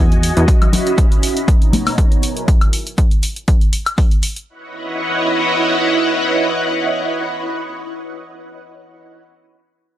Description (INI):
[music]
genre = filtered disco house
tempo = 120 BPM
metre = 4/4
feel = swing 54% on 16ths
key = C# dorian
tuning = A4 = 440 Hz
[part]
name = string machine, full ensemble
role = sustained chords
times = 0.0-9.2 s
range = B2 to B5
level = -18 LUFS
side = right 1 dB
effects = phaser, ensemble chorus, sidechain pumping, low-pass filter
[part]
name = plucky analog bass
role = bass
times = 0.0-0.5 s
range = E2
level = -14 LUFS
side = equal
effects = sidechain pumping, low-pass filter
[part]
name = electronic hi-hat and woodblock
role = drums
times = 0.1-4.5 s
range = none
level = -22 LUFS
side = left 1 dB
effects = overdrive
[part]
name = tambourine and congas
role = percussion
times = 0.2-2.5 s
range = none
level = -20 LUFS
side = left 2 dB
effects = sidechain pumping on perc, low-pass filter on perc
[part]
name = electronic kick drum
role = drums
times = 0.5-4.1 s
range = none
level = -13 LUFS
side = equal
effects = overdrive
[sound]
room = digital ambience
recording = dry, gritty hardware recording, lossy compression artefacts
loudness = -13 LUFS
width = side -13 dB against mid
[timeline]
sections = 0.0-4.5 A section; 4.5-8.5 B section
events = none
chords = 0.5 C#m11; 1.5 Bmaj9; 2.2 F#9; 3.5 N.C.; 4.5 C#m11